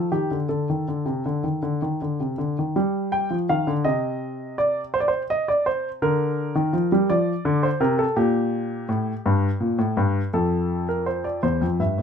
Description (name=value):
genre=classical, baroque-style two-part invention for grand piano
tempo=55 BPM (dotted quarters)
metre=6/8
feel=straight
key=G minor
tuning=A4 = 440 Hz
part: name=warm baby grand piano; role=solo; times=0.0-12.0 s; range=E2 to G5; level=-21 LUFS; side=equal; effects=none
room=light reverb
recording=minimal, uncompressed stereo recording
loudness=-21 LUFS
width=side -7 dB against mid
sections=0.0-2.7 A section; 2.7-11.4 B section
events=none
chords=0.5 D5; 2.7 G5; 3.8 Cmadd9; 6.0 Gm/D; 7.1 Dm; 8.2 Gm/Bb; 9.2 Gmadd9; 10.3 Dm/F; 11.4 C/E